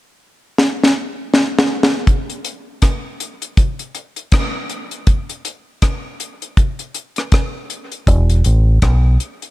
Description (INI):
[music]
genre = dub reggae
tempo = 80 BPM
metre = 4/4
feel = swing 60% on 16ths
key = unclear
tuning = A4 = 440 Hz
[part]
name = deep reggae drum kit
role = drums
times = 0.6-9.5 s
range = hi-hat, kick drum, rim click, snare drum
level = -15 LUFS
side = equal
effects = none
[part]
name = deep dub fingered electric bass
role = bass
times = 8.1-9.2 s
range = E1 to B1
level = -12 LUFS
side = equal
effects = none
[sound]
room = light reverb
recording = none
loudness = -14 LUFS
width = side -17 dB against mid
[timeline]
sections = 0.0-2.1 A section; 2.1-8.1 B section; 8.1-9.5 C section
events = drum fill 0.6-2.1; break 2.1-8.1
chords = none